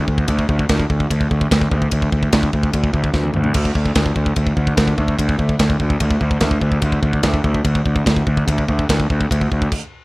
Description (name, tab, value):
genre	heavy metal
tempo	146 BPM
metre	4/4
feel	straight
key	unclear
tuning	A4 = 441 Hz
part	fuzz picked electric bass	bass	0.0-9.7 s	D2	-17 LUFS	equal	overdrive
part	tight metal drum kit	drums	0.1-9.8 s	crash cymbal, kick drum, ride cymbal, snare drum, toms	-20 LUFS	equal	none
room	little or no reverb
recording	rough home demo mix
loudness	-15 LUFS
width	side -23 dB against mid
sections	0.0-10.0 A section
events	drum fill 3.1-3.5; stop 9.7-10.0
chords	none